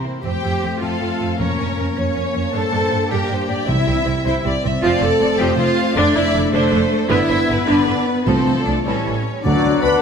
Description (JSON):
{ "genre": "cinematic", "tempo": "105 BPM (dotted quarters)", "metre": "6/8", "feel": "straight", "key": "F major", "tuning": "A4 = 440 Hz", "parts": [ { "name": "clear symphonic violin section", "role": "melody", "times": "0.0-10.0 s", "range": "A4 to B5", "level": "-27 LUFS", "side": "left 5 dB", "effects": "none" }, { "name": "warm symphonic violin section", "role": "second line", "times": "0.0-10.0 s", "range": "E4 to B5", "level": "-24 LUFS", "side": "left 1 dB", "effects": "none" }, { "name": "rich symphonic viola section", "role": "accompaniment", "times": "0.0-9.1 s", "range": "D3 to D4", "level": "-24 LUFS", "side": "right 1 dB", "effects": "none" }, { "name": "rich symphonic cello section", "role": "bass", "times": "0.0-9.9 s", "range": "D2 to A4", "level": "-21 LUFS", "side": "right 2 dB", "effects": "none" }, { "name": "mellow French horn section", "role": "sustained chords", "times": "0.2-10.0 s", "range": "G3 to B4", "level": "-23 LUFS", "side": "left 5 dB", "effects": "none" }, { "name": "dark symphonic double bass section", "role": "bass", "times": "0.2-9.9 s", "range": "F1 to G2", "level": "-23 LUFS", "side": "right 3 dB", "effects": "none" }, { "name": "timpani", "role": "percussion", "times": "1.4-4.2, 8.3-10.0 s", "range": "F2 to D3", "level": "-25 LUFS", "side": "left 1 dB", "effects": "none" }, { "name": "concert flute", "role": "second line", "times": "9.4-10.0 s", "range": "F#5", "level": "-28 LUFS", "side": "left 2 dB", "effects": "none" }, { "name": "dark clarinet", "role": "second line", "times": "9.4-10.0 s", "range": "D4 to B4", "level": "-29 LUFS", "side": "left 5 dB", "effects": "none" }, { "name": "warm oboe", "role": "second line", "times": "9.4-10.0 s", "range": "D5", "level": "-27 LUFS", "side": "left 5 dB", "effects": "none" }, { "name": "mellow trombone section", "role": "sustained chords", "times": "9.4-10.0 s", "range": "F#3 to B3", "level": "-26 LUFS", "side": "right 2 dB", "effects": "none" }, { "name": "warm trumpet section", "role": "stabs", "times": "9.4-10.0 s", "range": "F#3 to D4", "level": "-23 LUFS", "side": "right 1 dB", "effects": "none" }, { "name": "warm tuba", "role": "bass", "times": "9.4-9.9 s", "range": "D2", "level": "-27 LUFS", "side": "right 3 dB", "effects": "none" } ], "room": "wet concert hall reverb, RT60 1.9 s", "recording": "none", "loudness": "-16 LUFS", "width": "side -6 dB against mid", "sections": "0.2-9.5 A section", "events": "none", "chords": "0.2 F; 1.4 Bbm/F; 2.5 Gm; 3.7 C; 4.8 F; 6.0 Dm/F; 7.1 G; 8.3 F/C; 8.9 A7; 9.5 D6" }